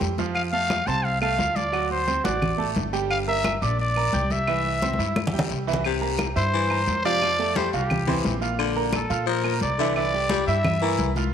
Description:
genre	latin, salsa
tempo	175 BPM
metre	4/4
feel	straight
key	unclear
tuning	A4 = 440 Hz
part	bright upright piano	accompaniment	0.0-11.3 s	E3 to G6	-28 LUFS	right 8 dB	none
part	upright bass	bass	0.0-11.3 s	G1 to Bb2	-28 LUFS	left 1 dB	none
part	congas	percussion	0.0-11.3 s	none	-29 LUFS	left 2 dB	none
part	guiro	percussion	0.0-11.3 s	none	-37 LUFS	left 12 dB	none
part	growling trumpet	melody	0.3-11.1 s	G4 to A5	-26 LUFS	equal	none
part	claves	percussion	0.4-10.8 s	none	-35 LUFS	equal	none
part	breathy baritone saxophone	second line	5.9-11.1 s	C3 to G3	-28 LUFS	left 9 dB	none
room	moderate echo chamber reverb, RT60 1.6 s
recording	1960s-style stereo with parts hard left and right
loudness	-21 LUFS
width	side -8 dB against mid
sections	0.0-5.8 A section; 5.8-11.3 B section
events	drum fill 4.8-5.8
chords	0.4 F; 1.7 D7; 3.1 Gm; 4.5 C; 5.8 C7; 7.2 Fmaj9; 8.6 Bbmaj7; 10.0 C7

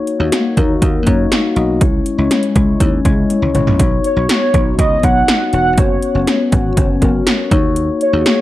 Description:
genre	1980s-style pop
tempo	121 BPM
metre	4/4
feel	straight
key	B major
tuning	A4 = 438 Hz
part	mellow tine electric piano	accompaniment	0.0-8.4 s	G#3 to D#5	-16 LUFS	left 4 dB	phaser
part	80s electronic pad drums	drums	0.1-8.4 s	hi-hat, kick drum, snare drum, toms	-15 LUFS	right 1 dB	gated reverb on snare and toms, overdrive
part	dry thumbed slap bass	bass	0.2-8.2 s	E1 to F#2	-18 LUFS	right 1 dB	none
part	warm velvety synth lead	melody	4.1-8.4 s	C#5 to F#5	-17 LUFS	right 2 dB	chorus, tape echo
room	little or no reverb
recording	dry, close 1970s-style studio recording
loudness	-12 LUFS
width	side -15 dB against mid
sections	0.0-8.4 A section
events	drum fill 3.3-3.8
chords	0.0 D#m7; 1.8 C#m; 3.8 Badd9; 5.8 F#sus4; 7.5 D#m7

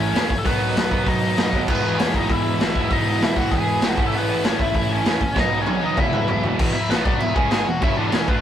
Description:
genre	punk rock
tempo	196 BPM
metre	4/4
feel	straight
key	E major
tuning	A4 = 441 Hz
part	biting lead guitar	melody	0.0-8.4 s	B3 to G#5	-24 LUFS	left 2 dB	overdrive, digital delay
part	distorted electric guitar	riff	0.0-8.4 s	E2 to E4	-25 LUFS	right 6 dB	distortion
part	thick fuzz guitar	riff	0.0-8.4 s	E2 to D4	-30 LUFS	equal	none
part	tight distorted guitar	riff	0.0-8.4 s	E2 to D4	-30 LUFS	left 6 dB	distortion
part	overdriven picked electric bass	bass	0.0-8.4 s	E1 to F#2	-31 LUFS	equal	none
part	raw garage drum kit	drums	0.2-8.4 s	crash cymbal, hi-hat, kick drum, snare drum, toms	-21 LUFS	equal	none
room	light reverb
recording	rough rehearsal-room recording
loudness	-18 LUFS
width	side -10 dB against mid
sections	0.0-6.6 A section; 6.6-8.4 B section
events	drum fill 5.4-6.6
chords	0.5 B; 1.7 E; 4.0 A; 5.4 B; 6.0 E

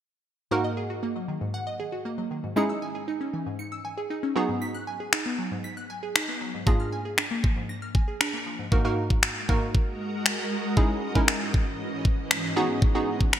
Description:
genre	dance-pop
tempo	117 BPM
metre	4/4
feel	straight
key	unclear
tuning	A4 = 439 Hz
part	glassy wavetable pluck	accompaniment	0.5-13.4 s	G#2 to A#4	-27 LUFS	right 2 dB	chorus, sidechain pumping
part	glassy wavetable pluck	arpeggios	0.5-8.7 s	G#2 to C#7	-32 LUFS	equal	chorus, sidechain pumping, digital delay
part	pop drum kit	drums	5.1-13.4 s	finger snaps, kick drum	-23 LUFS	equal	gated reverb
part	shimmering ambient pad	sustained chords	9.4-13.4 s	G#2 to D#5	-31 LUFS	equal	chorus, built-in reverb, sidechain pumping
room	light reverb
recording	bright 1980s-style digital production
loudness	-24 LUFS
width	side -11 dB against mid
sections	0.5-8.7 A section; 8.7-13.4 B section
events	none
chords	0.5 D#m/G#; 2.6 C#madd9; 4.4 G#m7; 6.7 A#7/G#; 8.7 D#m/G#; 10.8 C#madd9/G#; 12.6 G#m7

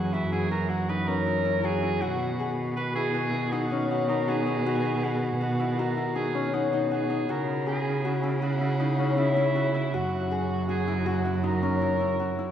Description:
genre	contemporary instrumental, chamber music in an uneven meter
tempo	159 BPM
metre	7/4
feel	straight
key	B major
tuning	A4 = 440 Hz
part	clear soprano saxophone	second line	0.0-12.4 s	E4 to B4	-32 LUFS	right 3 dB	none
part	mellow woodwind section	sustained chords	0.0-12.5 s	C#3 to F#4	-34 LUFS	left 1 dB	none
part	Celtic harp	arpeggios	0.0-12.5 s	C#4 to G#4	-29 LUFS	left 4 dB	none
part	rich cello	bass	0.0-12.5 s	F#2 to C#3	-28 LUFS	right 2 dB	none
room	wet concert hall reverb, RT60 2.1 s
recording	heard from further back in the room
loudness	-24 LUFS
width	side -9 dB against mid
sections	0.0-12.5 A section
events	none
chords	0.0 F#7; 2.0 B; 7.3 C#m7; 9.9 F#

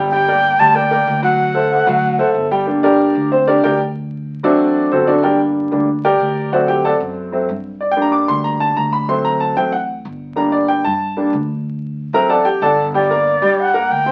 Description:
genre	latin, salsa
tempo	187 BPM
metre	4/4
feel	straight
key	G harmonic minor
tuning	A4 = 440 Hz
part	clear baby grand piano	accompaniment	0.0-14.1 s	F#3 to D6	-17 LUFS	equal	none
part	upright bass	bass	0.0-14.1 s	G1 to G2	-28 LUFS	equal	none
part	breathy bright concert flute	melody	0.1-2.3, 13.0-14.1 s	D5 to A5	-16 LUFS	equal	none
room	wet studio reverb, RT60 0.6 s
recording	very old 78 rpm record, vinyl crackle, faint mains hum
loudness	-16 LUFS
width	mono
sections	0.0-2.7 A section; 2.7-12.9 B section; 12.9-14.1 C section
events	grand piano solo 2.7-12.9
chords	0.1 Gm; 1.4 D7; 2.7 Gm; 4.0 D7; 5.2 Gm; 6.5 D7; 7.8 Gm; 9.1 D7; 10.4 Gm; 11.7 D7; 12.9 Gm

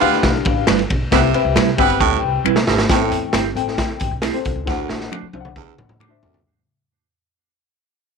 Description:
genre	uptempo 1960s-style soul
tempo	135 BPM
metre	4/4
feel	straight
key	unclear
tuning	A4 = 440 Hz
part	warm horn section	second line	0.0-2.1 s	B3 to B4	-19 LUFS	right 15 dB	none
part	dark upright piano	accompaniment	0.0-6.4 s	A2 to D6	-21 LUFS	left 15 dB	none
part	upright bass	bass	0.0-6.4 s	G1 to C3	-25 LUFS	equal	none
part	raw garage drum kit	drums	0.0-6.4 s	hi-hat, kick drum, ride cymbal, snare drum, toms	-20 LUFS	equal	none
part	clean electric guitar	stabs	0.7-6.1 s	G3 to C5	-22 LUFS	right 17 dB	tape echo
part	finger snaps	percussion	0.7-6.1 s	none	-24 LUFS	left 15 dB	none
part	growling baritone saxophone	riff	1.1-6.4 s	D2 to C3	-21 LUFS	right 15 dB	none
room	small room ambience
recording	1960s-style stereo with parts hard left and right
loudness	-15 LUFS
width	side -5 dB against mid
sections	0.0-2.9 A section; 2.9-6.5 B section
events	drum fill 2.0-2.9, 4.7-6.5; fade-out 2.9-6.5; upright piano fill 5.8-6.5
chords	0.0 G7; 1.1 Cmaj7; 2.9 Am7; 4.7 D7

